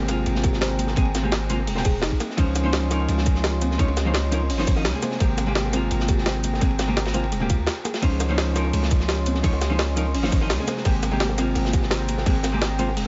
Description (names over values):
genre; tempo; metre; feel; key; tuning
liquid drum and bass; 170 BPM; 4/4; straight; Db lydian; A4 = 440 Hz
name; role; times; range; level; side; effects
vintage hollow-body jazz guitar; accompaniment; 0.0-13.1 s; C3 to Eb5; -30 LUFS; equal; dub echo
warm analog pad; sustained chords; 0.0-13.1 s; C4 to C6; -34 LUFS; equal; chorus, vintage 12-bit sampler grit
thumb-piano-like synth pluck; arpeggios; 0.0-13.1 s; Ab3 to Db5; -34 LUFS; equal; chorus, dub echo
long sustained 808-style bass; bass; 0.0-13.1 s; Eb1 to Eb2; -27 LUFS; equal; none
bongos and congas; percussion; 0.0-13.0 s; none; -38 LUFS; equal; none
crunchy breakbeat drum kit; drums; 0.1-13.1 s; hi-hat, ride cymbal, snare drum; -35 LUFS; equal; high-pass filter on hats, high-pass filter on cymbals, high-pass filter on snare, high-pass filter on room
jungle sampler-style drum kit; drums; 0.1-13.0 s; hi-hat, ride cymbal, shaker, snare drum; -31 LUFS; equal; none
electronic kick drum; drums; 0.4-12.3 s; none; -23 LUFS; equal; none
room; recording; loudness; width
light reverb, small room ambience; nothing above 7.7 kHz; -22 LUFS; mono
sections
0.0-13.1 A section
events
break 7.7-8.0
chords
0.0 Abmaj9; 2.4 Dbmaj9; 5.0 Abmaj9; 8.0 Dbmaj9; 10.7 Abmaj9